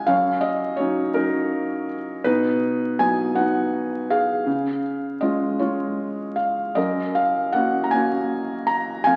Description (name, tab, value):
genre	classical, lyrical solo piano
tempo	51-57 BPM (dotted quarters)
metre	6/8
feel	rubato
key	F# major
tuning	A4 = 440 Hz
part	felt-muted upright piano	solo	0.0-9.2 s	E#2 to A#5	-22 LUFS	equal	none
room	wet scoring stage reverb, RT60 1.4 s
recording	very old 78 rpm record, vinyl crackle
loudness	-23 LUFS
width	mono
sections	0.0-9.2 A section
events	none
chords	0.1 D#m7/F#; 2.2 B; 4.5 C#; 6.8 F#